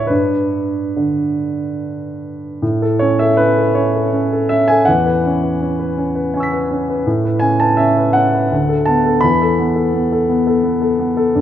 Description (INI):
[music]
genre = classical, impressionist solo piano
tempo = 69-85 BPM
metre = 3/4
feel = rubato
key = A major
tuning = A4 = 441 Hz
[part]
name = warm baby grand piano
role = solo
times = 0.0-11.4 s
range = D2 to B6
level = -14 LUFS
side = equal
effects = none
[sound]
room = moderate concert hall reverb, RT60 2.4 s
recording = none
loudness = -13 LUFS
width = side -10 dB against mid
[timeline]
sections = 0.0-2.6 A section; 2.6-11.4 B section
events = none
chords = 0.1 G; 2.6 A; 4.9 E69; 7.1 Aadd9; 8.5 D6; 9.2 Esus4